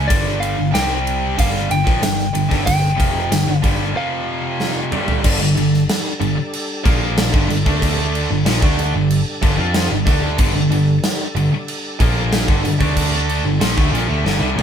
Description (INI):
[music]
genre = hard rock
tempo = 93 BPM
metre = 4/4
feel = straight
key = G minor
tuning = A4 = 441 Hz
[part]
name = scooped high-gain guitar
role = riff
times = 0.0-14.6 s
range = F2 to F4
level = -22 LUFS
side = left 8 dB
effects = distortion
[part]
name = tight distorted guitar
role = riff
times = 0.0-14.6 s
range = F2 to F4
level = -22 LUFS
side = right 7 dB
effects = distortion
[part]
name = picked electric bass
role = bass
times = 0.0-14.6 s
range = F1 to F2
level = -21 LUFS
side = equal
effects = none
[part]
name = lightly driven lead guitar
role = melody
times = 0.1-4.9 s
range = D5 to G5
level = -23 LUFS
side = equal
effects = none
[part]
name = gated 80s drum kit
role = drums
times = 0.1-14.6 s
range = crash cymbal, kick drum, ride cymbal, snare drum, toms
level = -19 LUFS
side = equal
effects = none
[part]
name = overdriven tonewheel organ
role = sustained chords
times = 5.2-14.6 s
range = G3 to D5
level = -29 LUFS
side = left 2 dB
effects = chorus vibrato, slow rotary speaker
[sound]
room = light reverb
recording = band playing live in one room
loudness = -15 LUFS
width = side -8 dB against mid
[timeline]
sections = 0.0-5.2 A section; 5.2-14.6 B section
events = break 4.0-5.2; drum fill 4.6-5.2, 14.3-14.6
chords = 0.0 G5; 0.7 C5; 1.4 Gm; 4.0 F5; 4.9 G5; 5.2 Gm; 7.7 D5; 8.3 Gm; 12.8 D5; 13.4 Gm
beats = | 0.10 0.74 1.38 2.03 | 2.67 3.31 3.96 4.60 | 5.24 5.88 6.53 7.17 | 7.81 8.46 9.10 9.74 | 10.39 11.03 11.67 12.32 | 12.96 13.61 14.25